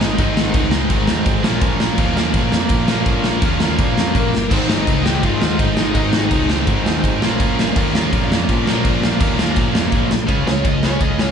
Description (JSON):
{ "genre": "punk rock", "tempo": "166 BPM", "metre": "4/4", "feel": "straight", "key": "unclear", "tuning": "A4 = 440 Hz", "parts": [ { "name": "biting lead guitar", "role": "melody", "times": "0.0-0.7, 4.2-6.5, 10.5-11.3 s", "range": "Bb3 to G5", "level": "-24 LUFS", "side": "left 2 dB", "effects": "overdrive" }, { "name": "distorted electric guitar", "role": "riff", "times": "0.0-11.3 s", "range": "Ab2 to Db4", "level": "-23 LUFS", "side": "right 1 dB", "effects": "overdrive" }, { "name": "overdriven electric guitar", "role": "riff", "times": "0.0-11.3 s", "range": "Ab2 to F4", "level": "-22 LUFS", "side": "equal", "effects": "none" }, { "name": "fuzz picked electric bass", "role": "bass", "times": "0.0-11.3 s", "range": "G1 to F2", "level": "-22 LUFS", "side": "equal", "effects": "overdrive" }, { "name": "big rock drum kit", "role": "drums", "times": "0.0-11.3 s", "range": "crash cymbal, kick drum, ride cymbal, snare drum", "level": "-18 LUFS", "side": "equal", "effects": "none" } ], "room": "light reverb", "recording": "band playing live in one room, nothing above 11.0 kHz", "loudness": "-14 LUFS", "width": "side -7 dB against mid", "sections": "0.0-10.3 A section; 10.3-11.3 B section", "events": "drum fill 4.3; lead electric guitar solo 10.3-11.3", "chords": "0.0 Ab; 1.4 Bbm; 4.5 Ab; 7.2 Bbm; 10.3 Db" }